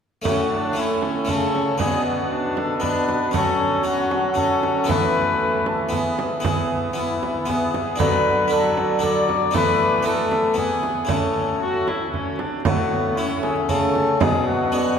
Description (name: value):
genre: classical, renaissance-style consort dance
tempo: 116 BPM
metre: 3/4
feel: straight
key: A major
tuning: A4 = 444 Hz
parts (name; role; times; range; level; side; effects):
- harpsichord; accompaniment; 0.2-15.0 s; A2 to A4; -25 LUFS; equal; none
- mellow cornet; melody; 0.3-15.0 s; E4 to D5; -23 LUFS; left 4 dB; none
- rich viola; accompaniment; 0.3-15.0 s; F#3 to F#4; -26 LUFS; equal; none
- mellow bassoon; bass; 0.3-15.0 s; A2 to F#3; -26 LUFS; right 1 dB; none
- frame drum; percussion; 0.3-14.4 s; none; -27 LUFS; right 4 dB; none
room: wet cathedral reverb, RT60 4.4 s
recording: recorded in a church or concert hall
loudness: -18 LUFS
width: side -7 dB against mid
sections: 0.3-12.7 A section; 12.7-15.0 A section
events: none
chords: 0.3 A; 1.8 Bm; 3.3 F#m; 4.9 Esus4; 5.9 E; 8.0 D; 9.5 Esus4; 10.6 E; 11.1 A; 14.2 Bm